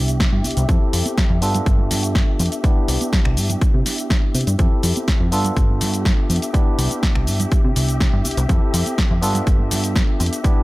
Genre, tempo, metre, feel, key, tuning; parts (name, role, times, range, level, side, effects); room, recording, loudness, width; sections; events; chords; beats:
filtered disco house; 123 BPM; 4/4; straight; C major; A4 = 440 Hz
barky tine electric piano; accompaniment; 0.0-10.6 s; B3 to A4; -25 LUFS; equal; phaser, sidechain pumping, low-pass filter
dark symphonic violin section; sustained chords; 0.0-10.6 s; G4 to E5; -32 LUFS; left 2 dB; sidechain pumping, low-pass filter
plucky analog bass; bass; 0.0-10.3 s; G1 to C3; -21 LUFS; equal; sidechain pumping, low-pass filter
punchy analog drum machine; drums; 0.1-10.5 s; finger snaps, hi-hat, shaker, snare drum; -24 LUFS; equal; sidechain pumping on hats, sidechain pumping on cymbals, sidechain pumping on perc
tambourine and congas; percussion; 0.1-10.5 s; -31 LUFS; right 3 dB
electronic kick drum; drums; 0.2-10.5 s; -17 LUFS; equal; overdrive
digital ambience; -16 LUFS; side -19 dB against mid
0.0-10.6 A section
filter sweep 0.0-10.6
0.0 Cmaj7; 0.7 Fmaj9; 1.4 G9; 2.6 Cmaj7; 4.6 Fmaj9; 5.3 G9; 6.5 Cmaj7; 8.5 Fmaj9; 9.2 G9
0.20 | 0.69 1.18 1.66 2.15 | 2.64 3.13 3.62 4.10 | 4.59 5.08 5.57 6.05 | 6.54 7.03 7.52 8.01 | 8.49 8.98 9.47 9.96 | 10.45